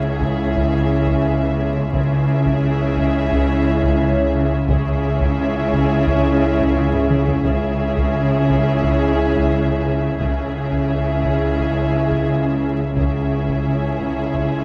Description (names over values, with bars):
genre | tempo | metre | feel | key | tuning
cinematic, suspense film score | 87 BPM | 4/4 | straight | C# minor | A4 = 441 Hz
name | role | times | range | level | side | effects
muted chamber violin section | melody | 0.0-14.6 s | E5 | -29 LUFS | equal | none
muted studio violin section | second line | 0.0-14.6 s | G#4 | -32 LUFS | equal | none
muted studio viola section | accompaniment | 0.0-14.6 s | C#4 | -31 LUFS | equal | none
dark French horn section | sustained chords | 0.0-14.6 s | G#3 to E4 | -28 LUFS | equal | none
concert harp | riff | 0.0-14.6 s | C#3 to C#4 | -26 LUFS | equal | none
muted chamber cello section | bass | 0.0-14.6 s | C#3 | -25 LUFS | equal | none
muted studio double bass section | bass | 0.0-14.6 s | C#2 | -26 LUFS | equal | none
overtone-sweeping drone | drone | 0.1-14.6 s | C#2 | -31 LUFS | equal | none
concert harp | texture | 0.0-14.6 s | B3 to C#6 | -34 LUFS | equal | none
taiko ensemble | drums | 0.2-14.6 s | none | -28 LUFS | equal | none
room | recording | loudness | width
moderate scoring stage reverb, RT60 1.8 s | vinyl crackle | -18 LUFS | mono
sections
0.0-14.6 A section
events
drum fill 6.8-7.4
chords
0.0 C#m